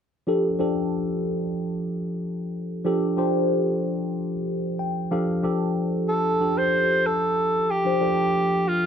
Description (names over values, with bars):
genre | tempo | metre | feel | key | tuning
soul | 93 BPM | 4/4 | straight | F major | A4 = 440 Hz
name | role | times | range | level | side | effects
tine electric piano | accompaniment | 0.3-8.9 s | F3 to G5 | -23 LUFS | equal | phaser
clear alto saxophone | melody | 6.1-8.9 s | F4 to C5 | -21 LUFS | right 1 dB | none
room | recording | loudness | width
light reverb, small room ambience | dark, warm production | -22 LUFS | side -8 dB against mid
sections
0.3-5.4 A section; 5.4-8.9 B section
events
tine electric piano fill 4.5-5.4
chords
0.3 F69